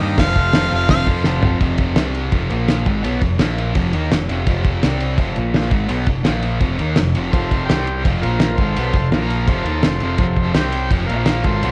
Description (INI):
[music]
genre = garage rock duo or trio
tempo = 168 BPM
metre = 4/4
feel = straight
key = F mixolydian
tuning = A4 = 439 Hz
[part]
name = combo organ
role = sustained chords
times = 0.0-1.6, 7.3-11.7 s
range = F4 to A5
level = -28 LUFS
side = equal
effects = spring reverb, cassette tape
[part]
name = thick fuzz guitar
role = riff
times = 0.0-11.7 s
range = F2 to Eb4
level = -23 LUFS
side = equal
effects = distortion, cassette tape
[part]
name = deep dub picked electric bass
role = bass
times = 0.0-11.7 s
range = F1 to G2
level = -25 LUFS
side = equal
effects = overdrive
[part]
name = clear harmonica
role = melody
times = 0.2-1.1 s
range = F5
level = -22 LUFS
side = equal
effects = overdrive, cassette tape
[part]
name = cloth-damped thuddy drum kit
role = drums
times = 0.2-11.7 s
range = hi-hat, kick drum, ride cymbal, snare drum, toms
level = -21 LUFS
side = equal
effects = cassette tape
[sound]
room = light reverb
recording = home recording on cassette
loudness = -18 LUFS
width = mono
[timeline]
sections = 0.0-1.6 A section; 1.6-11.7 B section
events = drum fill 1.3-1.6; transistor combo organ fill 9.5-10.2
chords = 0.2 F; 1.6 F5; 2.0 C5; 2.3 F5; 2.5 Bb5; 2.9 F5; 3.4 Bb5; 3.8 F5; 4.8 C5; 5.2 F5; 5.4 Bb5; 5.7 F5; 6.3 Bb5; 6.6 F; 7.7 C5; 8.0 F5; 8.2 Bb5; 8.6 F; 9.1 Bb5; 9.5 F; 10.6 C5; 10.9 F5; 11.1 Bb5